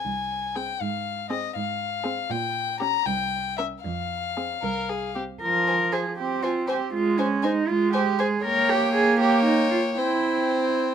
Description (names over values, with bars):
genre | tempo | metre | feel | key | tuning
quick classical-period movement for string quartet | 79 BPM (dotted quarters) | 6/8 | straight | F minor | A4 = 439 Hz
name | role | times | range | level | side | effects
warm violin | melody | 0.0-10.9 s | Eb5 to Bb5 | -28 LUFS | left 8 dB | none
warm cello | bass | 0.0-10.7 s | C2 to Bb4 | -25 LUFS | right 4 dB | none
dark violin | second line | 0.6-10.9 s | G4 to Db5 | -28 LUFS | left 2 dB | none
warm viola | accompaniment | 0.6-10.9 s | F3 to Db4 | -26 LUFS | right 2 dB | none
room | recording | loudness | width
little or no reverb | close, detailed microphones | -22 LUFS | side -8 dB against mid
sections
0.0-5.4 A section; 5.4-10.9 B section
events
none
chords
0.0 Fm (rootless); 0.8 Fm/Ab; 2.3 Gdim/Bb; 3.1 C5; 3.9 Fm; 6.9 Fm/Ab; 8.4 Gdim/Bb; 10.0 C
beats
0.05 | 0.81 1.56 | 2.30 3.06 | 3.85 4.63 | 5.42 6.18 | 6.93 7.69 | 8.44 9.20 | 9.97 10.75